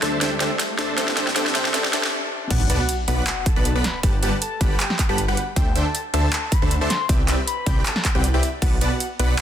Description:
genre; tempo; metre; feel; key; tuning
future bass; 157 BPM; 4/4; swing 54% on 16ths, half-time; unclear; A4 = 440 Hz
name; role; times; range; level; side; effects
bright concert grand piano; accompaniment; 0.0-2.5 s; G3 to A4; -31 LUFS; left 2 dB; sidechain pumping, ping-pong delay
dense compressed supersaw; riff; 0.0-9.3 s; G3 to B5; -25 LUFS; equal; sidechain pumping, low-pass filter
wide detuned saw bass; bass; 0.0-9.3 s; G1 to D2; -24 LUFS; equal; chorus, sidechain pumping
big-room dance drum kit; drums; 0.0-9.4 s; crash cymbal, handclaps, hi-hat, snare drum; -24 LUFS; equal; overdrive, high-pass filter on toms, high-pass filter on snare, high-pass filter on hats, high-pass filter on cymbals
riser and sub drop; sound effects; 0.0-4.0 s; none; -30 LUFS; equal; none
soft octave-layered synth lead; melody; 2.5-9.4 s; E5 to C6; -29 LUFS; left 2 dB; chorus, phaser, sidechain pumping, dub echo
electronic kick drum; drums; 2.5-8.7 s; none; -21 LUFS; equal; overdrive
room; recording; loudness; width
light reverb; dense, heavily limited modern master, high-pass filter; -19 LUFS; side -10 dB against mid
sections
0.0-2.5 A section; 2.5-9.4 B section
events
build-up 0.0-2.5; drum fill 0.0-2.1; riser 0.0-2.1; stop 2.1-2.5; drop 2.5-9.4; impact 2.5-4.0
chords
0.0 D7sus4; 1.0 C; 2.5 Bm7; 3.8 Gmaj9; 5.4 D7sus4; 7.1 Cmaj7; 8.6 Bm7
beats
0.21 0.59 | 0.98 1.36 1.74 2.12 | 2.50 2.89 3.27 3.65 | 4.03 4.42 4.80 5.18 | 5.56 5.95 6.33 6.71 | 7.09 7.47 7.86 8.24 | 8.62 9.00 9.38

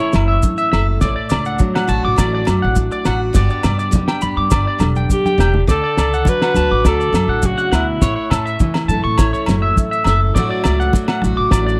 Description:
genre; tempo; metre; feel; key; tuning
highlife guitar band; 103 BPM; 4/4; straight; D major; A4 = 439 Hz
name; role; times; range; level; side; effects
clear alto saxophone; melody; 0.0-0.5, 5.1-8.6 s; E4 to B4; -21 LUFS; equal; none
picked steel-string acoustic guitar; accompaniment; 0.0-11.8 s; G2 to A4; -25 LUFS; equal; none
electric guitar at the edge of break-up; arpeggios; 0.0-11.8 s; A4 to D6; -23 LUFS; equal; spring reverb, tape echo
upright bass; bass; 0.1-11.8 s; E1 to A2; -21 LUFS; equal; none
damped 70s drum kit; drums; 0.1-11.7 s; kick drum, snare drum; -19 LUFS; equal; none
congas; percussion; 0.1-11.6 s; none; -25 LUFS; equal; none
maracas; percussion; 0.1-11.8 s; none; -35 LUFS; equal; none
agogo bells; percussion; 0.2-11.7 s; none; -30 LUFS; equal; none
room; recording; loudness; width
little or no reverb; dry, close 1970s-style studio recording; -16 LUFS; mono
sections
0.0-11.8 A section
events
drum fill 4.9-5.7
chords
0.0 A; 1.0 D/A; 3.3 G; 5.7 D; 8.0 A; 10.3 D/A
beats
0.43 | 1.01 1.59 2.18 2.76 | 3.34 3.92 4.51 5.09 | 5.67 6.26 6.84 7.43 | 8.01 8.60 9.18 9.76 | 10.35 10.93 11.52

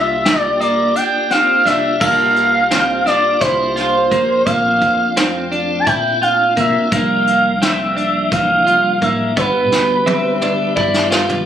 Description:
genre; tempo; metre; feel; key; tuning
progressive instrumental, band music in an uneven meter; 171 BPM (eighths); 7/8; straight; C mixolydian; A4 = 442 Hz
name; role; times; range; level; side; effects
expressive portamento lead; melody; 0.0-11.1 s; B4 to A5; -15 LUFS; equal; chorus, digital delay
tonewheel organ; accompaniment; 0.0-11.5 s; F3 to G4; -24 LUFS; equal; overdrive, chorus vibrato, slow rotary speaker
clean electric guitar; arpeggios; 0.0-11.4 s; E3 to G4; -20 LUFS; right 1 dB; wide subtle chorus
upright bass; bass; 0.0-11.5 s; G1 to Bb2; -28 LUFS; equal; none
vintage brush drum kit; drums; 0.3-11.5 s; crash cymbal, hi-hat, kick drum, snare drum, toms; -20 LUFS; equal; none
dark alto saxophone; second line; 10.1-11.5 s; B4 to E5; -20 LUFS; left 4 dB; digital delay
room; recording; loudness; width
moderate studio reverb, RT60 0.6 s; recorded on a phone in the room, studio ambience, compression; -13 LUFS; side -10 dB against mid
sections
0.0-2.0 A section; 2.0-11.5 B section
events
analog synth lead solo 0.0-2.0; drum fill 9.7-11.5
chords
0.0 C7sus4; 4.5 Bbmaj7; 6.9 C7sus4; 9.4 G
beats
0.26 0.61 0.96 1.31 1.66 | 2.01 2.36 2.71 3.06 3.41 3.77 4.12 | 4.47 4.82 5.17 5.52 5.87 6.22 6.57 | 6.92 7.27 7.62 7.97 8.32 8.67 9.02 | 9.37 9.72 10.07 10.42 10.77 11.12

